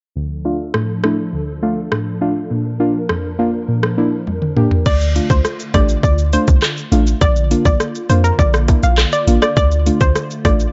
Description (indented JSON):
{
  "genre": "dancehall",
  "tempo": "102 BPM",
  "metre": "4/4",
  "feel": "straight",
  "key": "D minor",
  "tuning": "A4 = 441 Hz",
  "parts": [
    { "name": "hollow soft pad", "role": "sustained chords", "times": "0.1-10.7 s", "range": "D3 to Bb4", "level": "-29 LUFS", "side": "equal", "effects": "ensemble chorus, sidechain pumping, low-pass filter" },
    { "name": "deep mellow chord stab", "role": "accompaniment", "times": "0.2-10.6 s", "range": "D2 to G4", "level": "-21 LUFS", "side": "equal", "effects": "chorus, low-pass filter" },
    { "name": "island pop drum kit", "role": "drums", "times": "0.7-10.7 s", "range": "crash cymbal, handclaps, hi-hat, kick drum, rim click, shaker, toms", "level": "-19 LUFS", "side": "equal", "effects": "overdrive" },
    { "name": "hollow square pluck", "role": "melody", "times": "4.9-10.6 s", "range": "Bb4 to F5", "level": "-22 LUFS", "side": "equal", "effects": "chorus, delay" },
    { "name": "warm 808-style bass", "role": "bass", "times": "4.9-10.7 s", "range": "A1 to F2", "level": "-18 LUFS", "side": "equal", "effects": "none" }
  ],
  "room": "little or no reverb",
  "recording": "dark, warm production, nothing above 7.7 kHz",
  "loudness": "-16 LUFS",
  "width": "mono",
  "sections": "0.2-4.9 A section; 4.9-10.7 B section",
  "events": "filter sweep 0.2-4.9; drum fill 4.3-4.9",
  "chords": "0.2 Dm; 2.5 Bb; 4.9 Dm; 7.2 Bb; 9.6 Dm"
}